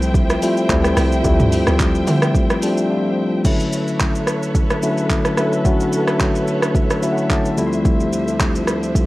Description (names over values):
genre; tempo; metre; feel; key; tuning
amapiano; 109 BPM; 4/4; swing 55% on 16ths; B minor; A4 = 440 Hz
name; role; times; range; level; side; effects
tine electric piano; accompaniment; 0.0-9.1 s; D2 to C6; -18 LUFS; left 1 dB; none
dark symphonic string section; sustained chords; 0.0-9.1 s; D3 to G5; -25 LUFS; right 2 dB; sidechain pumping
hollow log drum bass; bass; 0.0-2.3 s; C2 to D3; -19 LUFS; equal; none
deep house drum kit; drums; 0.0-9.1 s; crash cymbal, handclaps, hi-hat, kick drum, rim click, shaker, toms; -19 LUFS; equal; overdrive
room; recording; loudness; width
light reverb; worn, warbling old tape, cassette tape, warbly pitch drift; -15 LUFS; side -18 dB against mid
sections
0.0-3.4 A section; 3.4-9.1 B section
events
drop 0.0-3.4; drums muted 2.9-3.4; tine electric piano fill 6.8-7.9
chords
0.0 Dm11; 3.4 Bm11; 7.6 Dm11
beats
0.14 0.70 | 1.25 1.80 2.35 2.90 | 3.45 4.00 4.55 5.10 | 5.65 6.20 6.75 7.30 | 7.85 8.40 8.95